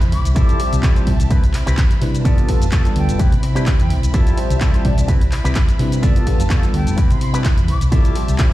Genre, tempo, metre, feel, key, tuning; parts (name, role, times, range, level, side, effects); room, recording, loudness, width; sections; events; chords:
filtered disco house; 127 BPM; 4/4; swing 55% on 16ths; C major; A4 = 440 Hz
warm chamber violin section; sustained chords; 0.0-8.5 s; C4 to B5; -30 LUFS; right 1 dB; sidechain pumping
hollow-body short-scale fingered electric bass; bass; 0.0-8.4 s; F1 to C3; -18 LUFS; equal; sidechain pumping
punchy analog drum machine; drums; 0.0-8.5 s; handclaps, hi-hat, shaker; -29 LUFS; equal; sidechain pumping on hats, sidechain pumping on perc
mellow concert flute; melody; 0.1-8.4 s; D5 to D6; -30 LUFS; left 2 dB; vintage 12-bit sampler grit, sidechain pumping, digital delay
electric guitar with an envelope filter; riff; 0.1-8.5 s; B3 to C5; -29 LUFS; equal; sidechain pumping
bell-like tine electric piano; accompaniment; 0.4-8.5 s; F3 to E5; -25 LUFS; equal; phaser, sidechain pumping
electronic kick drum; drums; 0.4-8.5 s; -16 LUFS; equal
little or no reverb; played on a big sound system in a bare room, large studio reverb; -14 LUFS; side -16 dB against mid
0.0-8.5 A section
0.4 Fmaj9; 1.3 Cmaj7; 2.3 G9; 3.2 Cmaj7; 4.1 Fmaj9; 5.1 Cmaj7; 6.0 G9; 7.0 Cmaj7; 7.9 Fmaj9